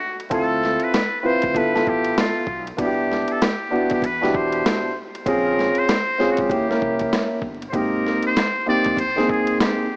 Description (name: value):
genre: hip hop, jazz-hop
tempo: 97 BPM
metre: 4/4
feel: swing 63% on 16ths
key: unclear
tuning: A4 = 440 Hz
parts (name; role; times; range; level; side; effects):
- trumpet with metal mute; melody; 0.0-10.0 s; F4 to D5; -24 LUFS; equal; tape echo
- boom bap sampler-style drum kit; drums; 0.2-9.8 s; hi-hat, kick drum, ride cymbal, snare drum; -24 LUFS; equal; vintage 12-bit sampler grit
- warm concert grand piano; accompaniment; 0.3-9.8 s; B2 to B4; -20 LUFS; equal; none
- upright bass; bass; 0.3-9.6 s; G1 to E2; -34 LUFS; equal; none
room: light reverb, studio ambience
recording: vinyl crackle, small speaker sound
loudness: -18 LUFS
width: side -28 dB against mid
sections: 0.0-10.0 A section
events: none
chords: 0.3 Dm9; 1.6 G13; 2.8 Cmaj7; 5.3 A#m9; 6.5 D#7b9; 7.7 G#maj7